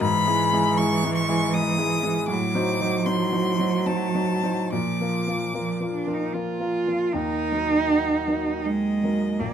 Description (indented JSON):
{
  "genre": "classical, slow romantic movement for piano trio",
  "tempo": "68-81 BPM",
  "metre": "3/4",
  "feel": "rubato",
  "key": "unclear",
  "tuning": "A4 = 440 Hz",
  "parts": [
    { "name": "clear violin", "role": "melody", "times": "0.0-9.5 s", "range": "Gb4 to Eb6", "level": "-28 LUFS", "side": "left 4 dB", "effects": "none" },
    { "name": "rich cello", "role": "second line", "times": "0.0-9.5 s", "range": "E3 to F4", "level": "-24 LUFS", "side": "right 4 dB", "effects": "none" },
    { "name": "warm baby grand piano", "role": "accompaniment", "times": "0.0-9.5 s", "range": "Bb1 to C5", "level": "-26 LUFS", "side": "left 2 dB", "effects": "none" }
  ],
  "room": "little or no reverb",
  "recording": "close, detailed microphones",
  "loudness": "-21 LUFS",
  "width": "side -8 dB against mid",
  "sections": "0.0-7.1 A section; 7.1-9.5 B section",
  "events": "none",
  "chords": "0.0 E/G#; 2.3 Adim7; 4.7 Bb; 7.1 Ebm"
}